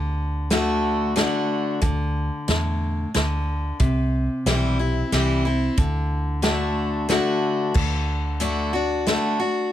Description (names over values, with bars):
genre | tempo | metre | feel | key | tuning
honky-tonk and classic country | 91 BPM | 3/4 | straight | D mixolydian | A4 = 440 Hz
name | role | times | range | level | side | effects
picked steel-string acoustic guitar | accompaniment | 0.0-9.7 s | A2 to F#4 | -23 LUFS | left 2 dB | none
vintage muted fingered electric bass | bass | 0.0-9.2 s | B1 to E2 | -25 LUFS | right 1 dB | none
unplugged drum kit | drums | 0.5-9.2 s | crash cymbal, hi-hat, kick drum, snare drum | -24 LUFS | equal | none
room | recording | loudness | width
little or no reverb | none | -20 LUFS | side -11 dB against mid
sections
0.0-7.8 A section; 7.8-9.7 B section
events
none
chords
0.0 D; 1.8 Dsus2; 3.8 C; 5.8 D